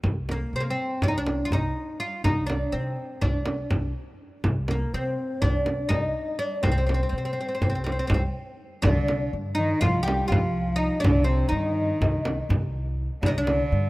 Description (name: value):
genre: Turkish makam ensemble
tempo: 246 BPM (eighths)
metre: 9/8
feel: straight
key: C makam ussak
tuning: A4 = 440 Hz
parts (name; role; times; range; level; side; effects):
- upright bass; bass; 0.0-13.9 s; C2 to C3; -28 LUFS; equal; none
- frame drum; percussion; 0.0-13.6 s; none; -25 LUFS; equal; none
- oud; melody; 0.3-13.9 s; Bb3 to G4; -28 LUFS; equal; none
- mellow hollow low ney; second line; 4.7-13.9 s; Bb4 to G5; -31 LUFS; left 2 dB; none
- rich cello; second line; 8.8-13.9 s; C3 to G3; -30 LUFS; right 1 dB; none
room: light reverb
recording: rough home demo mix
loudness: -23 LUFS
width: side -20 dB against mid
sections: 0.0-8.8 A section; 8.8-13.9 B section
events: none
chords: none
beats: | 0.03 0.27 0.52 0.77 1.01 1.25 1.50 1.75 1.99 | 2.24 2.48 2.73 2.97 3.22 3.46 3.71 3.95 4.20 | 4.44 4.69 4.93 5.18 5.42 5.67 5.91 6.16 6.40 | 6.65 6.89 7.13 7.38 7.62 7.87 8.11 8.36 8.60 | 8.84 9.09 9.33 9.57 9.82 10.06 10.30 10.55 10.79 | 11.04 11.28 11.52 11.76 12.01 12.25 12.49 12.74 12.98 | 13.22 13.47 13.71